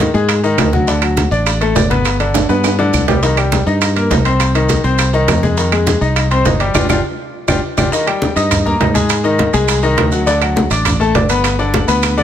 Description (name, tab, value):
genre	latin, salsa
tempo	204 BPM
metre	4/4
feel	straight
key	unclear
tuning	A4 = 439 Hz
part	bright baby grand piano	accompaniment	0.0-12.2 s	D3 to Eb6	-16 LUFS	left 3 dB	none
part	fingered electric bass	bass	0.0-12.2 s	G1 to Ab2	-16 LUFS	right 1 dB	none
part	congas	percussion	0.0-12.2 s	none	-21 LUFS	equal	none
part	timbales	percussion	0.0-12.2 s	none	-21 LUFS	right 9 dB	none
part	bongos	percussion	0.1-12.2 s	none	-25 LUFS	left 4 dB	none
part	maracas	percussion	0.1-12.2 s	none	-25 LUFS	right 8 dB	none
part	claves	percussion	0.3-12.2 s	none	-23 LUFS	right 10 dB	none
room	light reverb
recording	none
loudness	-12 LUFS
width	side -10 dB against mid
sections	0.0-7.9 A section; 7.9-12.2 A section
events	drum fill 2.3-3.2, 6.8-7.9; band accent 6.8-7.9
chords	0.0 Ab5; 0.9 D; 2.0 G; 3.2 Cm7; 4.4 Ab/C; 5.6 Fm7; 6.8 G5; 7.9 Ebadd11; 9.1 Ab; 10.3 D; 11.4 G